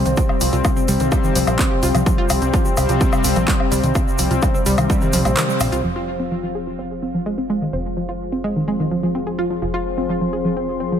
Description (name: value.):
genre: melodic techno.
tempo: 127 BPM.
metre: 4/4.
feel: straight.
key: F minor.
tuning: A4 = 444 Hz.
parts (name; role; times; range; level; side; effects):
deep dark ambient pad; sustained chords; 0.0-11.0 s; G4 to C6; -27 LUFS; right 2 dB; chorus, built-in reverb, sidechain pumping.
analog pluck; arpeggios; 0.0-11.0 s; Eb3 to Ab4; -23 LUFS; right 1 dB; chorus, cassette tape, sidechain pumping, dub echo.
brassy analog pad; stabs; 0.0-11.0 s; C3 to F4; -24 LUFS; left 5 dB; chorus, sidechain pumping, dub echo.
plucky analog bass; bass; 0.0-11.0 s; F1 to C2; -24 LUFS; equal; sidechain pumping.
techno drum kit; drums; 0.1-5.8 s; handclaps, hi-hat, woodblock; -24 LUFS; left 1 dB; overdrive, low-pass filter on hats, low-pass filter on snare, low-pass filter on perc.
egg shaker; percussion; 0.1-5.8 s; none; -30 LUFS; right 3 dB; none.
electronic kick drum; drums; 0.2-5.0 s; none; -19 LUFS; equal; overdrive.
room: light reverb, digital ambience.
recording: none.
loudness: -17 LUFS.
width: side -9 dB against mid.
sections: 0.0-5.8 A section; 5.8-11.0 B section.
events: kick drops out 5.4-5.8; band accent 5.4; filter sweep on analog synth pad 5.8-11.0.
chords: 0.0 Csus4; 5.8 Fm.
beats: | 0.17 0.65 1.12 1.59 | 2.06 2.54 3.01 3.48 | 3.95 4.42 4.90 5.37 | 5.84 6.32 6.79 7.26 | 7.73 8.20 8.68 9.15 | 9.62 10.09 10.57.